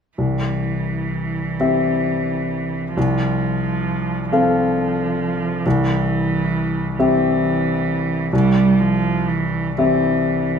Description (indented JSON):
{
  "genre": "classical, slow romantic movement for piano quartet",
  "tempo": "44 BPM (dotted quarters)",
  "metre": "6/8",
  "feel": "uneven beats, rubato",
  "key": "C major",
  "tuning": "A4 = 437 Hz",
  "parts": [
    { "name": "rich cello", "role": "second line", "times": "0.2-10.6 s", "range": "E3 to G3", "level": "-22 LUFS", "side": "right 5 dB", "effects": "none" },
    { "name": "clear grand piano", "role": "accompaniment", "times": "0.2-10.6 s", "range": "C2 to F5", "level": "-19 LUFS", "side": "left 2 dB", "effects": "none" }
  ],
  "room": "wet recital hall reverb, RT60 1.4 s",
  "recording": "none",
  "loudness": "-17 LUFS",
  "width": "side -7 dB against mid",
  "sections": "0.2-10.6 A section",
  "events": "none",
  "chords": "0.2 C; 3.0 F/C; 5.7 C"
}